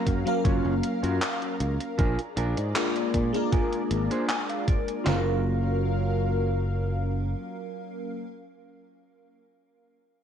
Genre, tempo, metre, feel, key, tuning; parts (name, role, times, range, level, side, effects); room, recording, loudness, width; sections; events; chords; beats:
vaporwave; 78 BPM; 4/4; straight; A4 = 440 Hz
FM electric piano with soft pad layer; accompaniment; 0.0-8.3 s; Gb3 to F5; -29 LUFS; left 1 dB; analog chorus, tape echo
lush unison pad; sustained chords; 0.0-8.3 s; Gb3 to Bb5; -36 LUFS; left 1 dB; chorus, phaser, vintage 12-bit sampler grit
clean electric guitar; riff; 0.1-8.3 s; Db4 to Ab5; -34 LUFS; right 2 dB; wide subtle chorus, vintage 12-bit sampler grit, tape echo
modern bright fingered electric bass; bass; 0.1-7.3 s; Gb1 to Bb2; -27 LUFS; equal
detuned 8-bit digital drum machine; drums; 0.1-5.3 s; handclaps, kick drum, snare drum; -26 LUFS; equal
gated 80s digital drum machine; drums; 0.1-5.0 s; handclaps, hi-hat; -32 LUFS; equal; gated reverb
light reverb; cassette tape; -24 LUFS; side -8 dB against mid
0.0-5.1 A section; 5.1-8.1 B section
clean electric guitar fill 3.9-5.1
0.0 Gbmaj7; 2.0 Bb7; 5.1 Gbmaj7
0.45 1.22 | 1.99 2.76 3.53 4.30 | 5.07 5.83 6.60 7.37